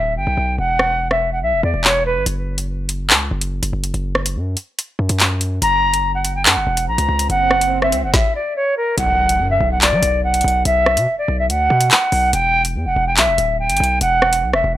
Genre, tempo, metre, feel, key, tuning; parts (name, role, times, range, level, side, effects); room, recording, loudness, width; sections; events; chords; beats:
hip hop, drill; 143 BPM; 4/4; half-time; B harmonic minor; A4 = 443 Hz
silver concert flute; melody; 0.0-2.2, 5.6-14.8 s; A#4 to A#5; -16 LUFS; equal; low-pass filter, analog delay
distorted 808-style bass; bass; 0.0-14.8 s; D1 to F#3; -21 LUFS; equal; distortion, tube saturation
drill drum kit; drums; 0.8-14.6 s; handclaps, hi-hat, kick drum, rim click, snare drum; -16 LUFS; equal
swell and impact; sound effects; 6.9-10.7 s; -28 LUFS; right 2 dB
digital ambience; dry, gritty hardware recording, transformer saturation; -14 LUFS; side -13 dB against mid
0.0-9.0 A section; 9.0-14.8 B section
break 0.0-2.3, 2.3-5.6; swell 6.9-9.0; impact 9.0-10.7
0.0 Esus2; 2.3 N.C.; 9.0 B5; 12.3 Emadd9
0.16 | 0.58 1.00 1.42 1.84 | 2.26 2.68 3.10 3.52 | 3.94 4.36 4.78 5.20 | 5.62 6.04 6.46 6.88 | 7.30 7.72 8.14 8.56 | 8.98 9.39 9.81 10.23 | 10.65 11.07 11.49 11.91 | 12.33 12.75 13.17 13.59 | 14.01 14.43